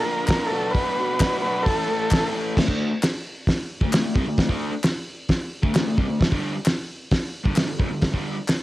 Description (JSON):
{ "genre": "garage rock duo or trio", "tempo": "132 BPM", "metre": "4/4", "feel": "straight", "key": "D major", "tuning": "A4 = 442 Hz", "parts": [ { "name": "overdriven combo organ", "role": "melody", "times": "0.0-2.3 s", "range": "A4 to B4", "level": "-24 LUFS", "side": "equal", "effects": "cassette tape" }, { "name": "crunchy overdriven guitar", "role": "riff", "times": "0.0-8.4 s", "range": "F2 to A4", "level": "-25 LUFS", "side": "left 1 dB", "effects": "cassette tape" }, { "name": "cloth-damped thuddy drum kit", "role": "drums", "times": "0.3-8.6 s", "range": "crash cymbal, hi-hat, kick drum, snare drum", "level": "-22 LUFS", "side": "equal", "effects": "cassette tape" }, { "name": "group handclap", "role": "percussion", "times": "0.3-8.6 s", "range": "none", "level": "-30 LUFS", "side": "left 2 dB", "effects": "none" } ], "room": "small room ambience", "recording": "home recording on cassette", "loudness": "-20 LUFS", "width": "side -17 dB against mid", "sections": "0.0-2.6 A section; 2.6-8.6 B section", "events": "none", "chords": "0.0 Bb; 0.5 Bm; 1.7 A; 2.6 D5; 6.2 G5" }